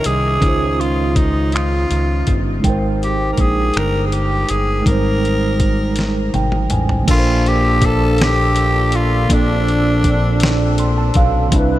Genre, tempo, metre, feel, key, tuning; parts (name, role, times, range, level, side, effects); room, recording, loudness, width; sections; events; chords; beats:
slow six-eight R&B; 54 BPM (dotted quarters); 6/8; straight; Bb major; A4 = 440 Hz
growling tenor saxophone; melody; 0.0-10.8 s; D4 to Bb4; -20 LUFS; equal
mellow tine electric piano; accompaniment; 0.0-11.8 s; Bb2 to C6; -20 LUFS; right 2 dB; medium stereo tremolo
dusty soul sampler-style drum kit; drums; 0.0-11.7 s; crash cymbal, finger snaps, hi-hat, kick drum, snare drum, toms; -19 LUFS; equal
fat analog bass; bass; 0.1-11.8 s; G1 to Db2; -18 LUFS; equal
tonewheel organ; sustained chords; 7.1-11.8 s; C3 to B4; -24 LUFS; left 1 dB; overdrive, chorus vibrato, slow rotary speaker
light reverb; -14 LUFS; side -14 dB against mid
0.0-7.1 A section; 7.1-11.8 B section
drum fill 6.0-7.1; tine electric piano fill 6.0-7.1, 10.4-11.5
0.0 Dbmaj9; 2.6 Abmaj9; 7.1 Bbmaj9
| 0.41 1.52 | 2.63 3.74 | 4.86 5.97 | 7.08 8.19 | 9.30 10.41 | 11.52